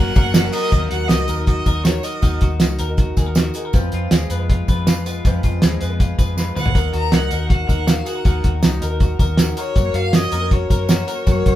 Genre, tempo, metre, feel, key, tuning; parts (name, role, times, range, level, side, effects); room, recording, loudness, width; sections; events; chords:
jangly indie pop; 159 BPM; 4/4; straight; Eb minor; A4 = 440 Hz
clear violin; melody; 0.0-2.4, 6.6-11.6 s; Db5 to Bb5; -25 LUFS; left 1 dB
fingerpicked twelve-string acoustic guitar; accompaniment; 0.0-11.6 s; F2 to Cb5; -28 LUFS; equal
lush unison pad; sustained chords; 0.0-0.7 s; barely audible
twelve-string electric guitar; arpeggios; 0.0-11.6 s; F2 to Cb5; -26 LUFS; left 3 dB
vintage muted fingered electric bass; bass; 0.0-11.6 s; Gb1 to Gb2; -22 LUFS; equal
cloth-damped thuddy drum kit; drums; 0.2-11.5 s; hi-hat, kick drum, ride cymbal, snare drum, toms; -16 LUFS; equal
tambourine; percussion; 0.2-11.6 s; -35 LUFS; right 5 dB
light reverb; band playing live in one room; -15 LUFS; side -13 dB against mid
0.7-11.6 A section
drum fill 6.4-6.8
0.0 Gb; 0.7 Ebm; 3.7 Fdim; 6.8 Ebm; 9.8 Gb